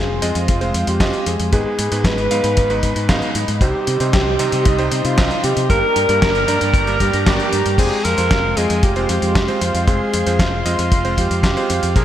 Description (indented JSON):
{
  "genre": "italo disco",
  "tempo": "115 BPM",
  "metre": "4/4",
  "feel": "straight",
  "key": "unclear",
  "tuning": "A4 = 439 Hz",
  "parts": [
    { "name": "breathy alto saxophone", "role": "melody", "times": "0.0-12.0 s", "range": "Eb4 to Cb5", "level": "-20 LUFS", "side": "equal", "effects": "low-pass filter, digital delay, shimmer reverb" },
    { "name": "warm analog pad", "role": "sustained chords", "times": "0.0-12.0 s", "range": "Ab3 to D6", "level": "-24 LUFS", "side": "equal", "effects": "chorus, shimmer reverb" },
    { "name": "bright electric grand piano", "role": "stabs", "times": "0.0-12.0 s", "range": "G2 to F5", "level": "-24 LUFS", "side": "right 2 dB", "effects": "shimmer reverb" },
    { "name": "fingered electric bass with an envelope filter", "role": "bass", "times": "0.0-12.0 s", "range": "F1 to C3", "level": "-22 LUFS", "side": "equal", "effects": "none" },
    { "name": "dusty soul sampler-style drum kit", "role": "drums", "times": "0.2-12.0 s", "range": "crash cymbal, hi-hat, snare drum", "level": "-23 LUFS", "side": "left 1 dB", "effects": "overdrive" },
    { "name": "kick drum", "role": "drums", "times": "0.5-12.0 s", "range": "none", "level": "-17 LUFS", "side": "equal", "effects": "none" }
  ],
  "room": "wet lush hall reverb, RT60 1.8 s, studio ambience",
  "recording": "bright 1980s-style digital production",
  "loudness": "-14 LUFS",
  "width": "side -11 dB against mid",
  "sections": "0.0-7.8 A section; 7.8-12.0 B section",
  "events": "filter sweep on analog synth pad 0.0-7.8; filter sweep on alto saxophone 0.0-7.8",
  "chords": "0.0 Fm; 1.5 Abm; 3.6 Cm; 5.7 Gm; 7.8 Fm"
}